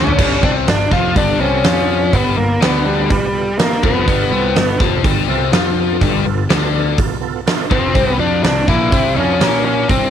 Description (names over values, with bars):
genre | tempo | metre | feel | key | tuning
blues rock power trio and southern rock | 124 BPM | 4/4 | straight | G mixolydian | A4 = 445 Hz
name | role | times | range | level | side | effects
octave-fuzz lead guitar | melody | 0.0-4.8, 7.7-10.1 s | G3 to F4 | -18 LUFS | equal | distortion
overdriven tonewheel organ | sustained chords | 0.0-10.1 s | B3 to D5 | -26 LUFS | right 11 dB | chorus vibrato, slow rotary speaker
biting overdriven guitar | riff | 0.0-10.1 s | F2 to Bb4 | -19 LUFS | left 11 dB | none
fuzz picked electric bass | bass | 0.0-10.1 s | F1 to Bb2 | -20 LUFS | right 1 dB | overdrive
huge arena drum kit | drums | 0.1-10.0 s | crash cymbal, hi-hat, kick drum, snare drum, toms | -17 LUFS | right 2 dB | none
room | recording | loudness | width
light reverb, small room ambience | 1960s-style stereo with parts hard left and right | -13 LUFS | side -9 dB against mid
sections
0.2-10.1 A section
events
drum fill 0.0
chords
0.2 G7; 8.0 C7